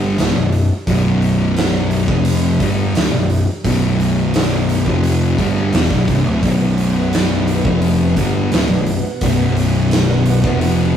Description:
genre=stoner and doom metal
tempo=86 BPM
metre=4/4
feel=straight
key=B phrygian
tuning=A4 = 440 Hz
part: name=thick fuzz guitar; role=riff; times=0.0-11.0 s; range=B1 to G3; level=-18 LUFS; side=left 5 dB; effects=distortion
part: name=thick fuzz guitar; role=riff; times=0.0-11.0 s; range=B1 to G3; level=-20 LUFS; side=right 8 dB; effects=distortion
part: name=fuzz picked electric bass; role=bass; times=0.0-10.9 s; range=B0 to G1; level=-20 LUFS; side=equal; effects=overdrive, tube saturation
part: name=big rock drum kit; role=drums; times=0.2-10.8 s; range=hi-hat, kick drum, snare drum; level=-21 LUFS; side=right 1 dB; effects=none
part: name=string machine, cellos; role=sustained chords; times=6.4-11.0 s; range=B3 to F#5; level=-25 LUFS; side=right 3 dB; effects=ensemble chorus
room=light reverb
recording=rough rehearsal-room recording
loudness=-13 LUFS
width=side -9 dB against mid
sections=0.0-11.0 A section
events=none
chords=0.0 Bm

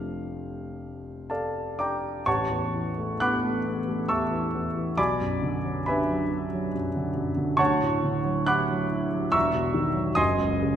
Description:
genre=classical, impressionist solo piano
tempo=68 BPM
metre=3/4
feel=uneven beats, rubato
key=A major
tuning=A4 = 440 Hz
part: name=clear grand piano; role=solo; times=0.0-10.8 s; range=E1 to F#6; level=-24 LUFS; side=equal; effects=none
room=moderate concert hall reverb, RT60 2.4 s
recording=minimal, uncompressed stereo recording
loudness=-24 LUFS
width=side -9 dB against mid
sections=0.0-2.3 A section; 2.3-10.8 B section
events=none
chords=0.0 F69; 2.3 Aadd9; 5.0 Bm; 7.6 Dmaj9; 9.3 Esus2; 10.2 F#sus2

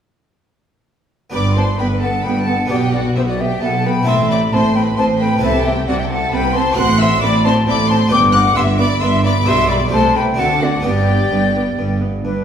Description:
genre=classical, baroque-style concerto movement with solo episodes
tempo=133 BPM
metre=3/4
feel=straight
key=G major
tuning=A4 = 439 Hz
part: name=rich chamber violin section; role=melody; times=1.3-12.4 s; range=G4 to G6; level=-24 LUFS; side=left 2 dB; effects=none
part: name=silver concert flute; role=melody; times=1.3-12.4 s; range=B4 to D6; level=-19 LUFS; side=left 2 dB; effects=none
part: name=warm studio violin section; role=second line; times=1.3-12.4 s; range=D4 to G5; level=-22 LUFS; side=left 2 dB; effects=none
part: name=clear symphonic viola section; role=accompaniment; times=1.3-12.4 s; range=G3 to D4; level=-23 LUFS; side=right 2 dB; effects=none
part: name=harpsichord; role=accompaniment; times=1.3-12.4 s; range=G2 to C5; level=-23 LUFS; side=equal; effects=none
part: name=rich symphonic cello section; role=bass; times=1.3-12.4 s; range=G2 to D3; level=-20 LUFS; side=right 1 dB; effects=none
part: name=warm chamber double bass section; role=bass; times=1.3-12.4 s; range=G1 to D2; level=-21 LUFS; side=right 2 dB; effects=none
room=wet recital hall reverb, RT60 1.5 s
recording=heard from further back in the room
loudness=-13 LUFS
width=side -8 dB against mid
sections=1.3-12.2 A section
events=none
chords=1.3 G; 2.7 G/B; 4.1 Am; 5.4 Am/C; 6.8 F#dim/A; 8.1 G; 9.5 G/B; 9.9 Am7/C; 10.4 D7; 10.8 G

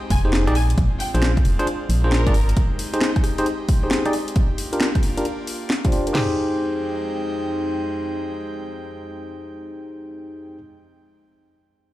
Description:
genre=UK garage, two-step garage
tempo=134 BPM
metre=4/4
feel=swing 66% on 16ths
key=F dorian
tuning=A4 = 440 Hz
part: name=airy breathy pad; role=sustained chords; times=0.0-10.5 s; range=F2 to G5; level=-31 LUFS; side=equal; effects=chorus, sidechain pumping
part: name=rich studio violin section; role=melody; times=0.1-2.5 s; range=Bb4 to Ab5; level=-32 LUFS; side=equal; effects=dub echo
part: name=organ-like FM bass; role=bass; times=0.1-2.5 s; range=F1 to Bb1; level=-19 LUFS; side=equal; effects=tube saturation
part: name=house drum kit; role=drums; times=0.1-6.3 s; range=crash cymbal, kick drum, snare drum, toms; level=-20 LUFS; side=equal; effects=overdrive, small room ambience
part: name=house drum kit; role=drums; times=0.1-6.1 s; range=hi-hat, rim click, snare drum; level=-26 LUFS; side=equal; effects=overdrive, small room ambience
part: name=bell-like tine electric piano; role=stabs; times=0.2-10.6 s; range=D4 to D5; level=-25 LUFS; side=left 1 dB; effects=low-pass filter, dub echo
room=light reverb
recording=played on a big sound system in a bare room, large studio reverb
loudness=-19 LUFS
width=side -15 dB against mid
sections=0.0-6.1 A section; 6.1-9.7 B section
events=filter sweep on tine electric piano 0.0-6.1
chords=0.0 Fm9; 0.6 Bb9; 2.3 Abmaj7; 4.4 Gm7; 6.1 Fm9

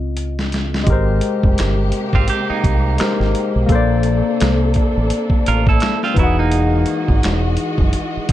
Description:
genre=R&B, neo-soul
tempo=85 BPM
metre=4/4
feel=swing 57% on 16ths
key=unclear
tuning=A4 = 437 Hz
part: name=barky tine electric piano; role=accompaniment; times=0.0-8.3 s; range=Db3 to F#5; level=-20 LUFS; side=left 4 dB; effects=overdrive, wide subtle chorus
part: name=deep dub fingered electric bass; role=bass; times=0.0-8.3 s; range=E1 to Db2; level=-18 LUFS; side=equal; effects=none
part: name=boom bap sampler-style drum kit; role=drums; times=0.2-8.3 s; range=finger snaps, hi-hat, kick drum, snare drum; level=-18 LUFS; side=right 1 dB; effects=none
part: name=warm studio string section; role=sustained chords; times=0.9-8.3 s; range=C3 to D#5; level=-26 LUFS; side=equal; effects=none
part: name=semi-hollow electric guitar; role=second line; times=2.1-7.4 s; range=Bb3 to Bb4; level=-22 LUFS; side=right 8 dB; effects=none
room=light reverb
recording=dark, warm production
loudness=-14 LUFS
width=side -13 dB against mid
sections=0.9-8.3 A section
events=drum fill 0.0-0.9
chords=0.0 Dbmaj9; 0.9 Abmaj9; 3.7 Bbmaj9; 6.2 Emaj9

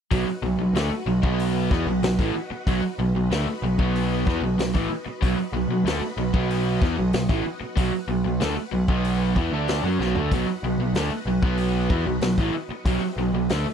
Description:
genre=classic rock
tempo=94 BPM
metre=4/4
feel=straight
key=B mixolydian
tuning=A4 = 440 Hz
part: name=string machine, full ensemble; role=sustained chords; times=0.1-13.7 s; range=F#4 to F#5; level=-36 LUFS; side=left 2 dB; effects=ensemble chorus
part: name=overdriven semi-hollow guitar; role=riff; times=0.1-13.7 s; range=A2 to D4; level=-25 LUFS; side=right 10 dB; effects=none
part: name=raw garage guitar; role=riff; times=0.1-13.7 s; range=A2 to D4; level=-28 LUFS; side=left 14 dB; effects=overdrive
part: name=growling picked electric bass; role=bass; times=0.1-13.7 s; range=A1 to F#2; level=-27 LUFS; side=left 1 dB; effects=overdrive
part: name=vintage drum kit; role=drums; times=0.1-13.7 s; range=hi-hat, kick drum, snare drum, toms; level=-25 LUFS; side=left 1 dB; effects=none
room=little or no reverb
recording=dry, close 1970s-style studio recording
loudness=-21 LUFS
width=side -8 dB against mid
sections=0.1-13.7 A section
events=drum fill 10.0-10.3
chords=0.1 B

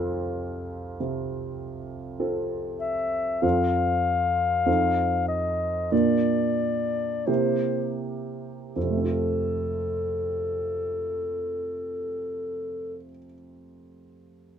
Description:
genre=classical, romantic duo for clarinet and grand piano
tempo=39-52 BPM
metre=4/4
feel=rubato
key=F major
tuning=A4 = 443 Hz
part: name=warm grand piano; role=accompaniment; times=0.0-14.6 s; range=F2 to F6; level=-27 LUFS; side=right 3 dB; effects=none
part: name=dark clarinet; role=melody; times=2.8-13.0 s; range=A4 to F5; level=-26 LUFS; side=left 4 dB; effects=none
room=light reverb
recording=close, detailed microphones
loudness=-24 LUFS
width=side -8 dB against mid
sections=0.0-3.4 A section; 3.4-8.8 B section; 8.8-14.5 C section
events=slowing down 0.0-8.8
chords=0.0 F; 4.7 F7; 5.9 Bb; 7.3 C7; 8.8 F

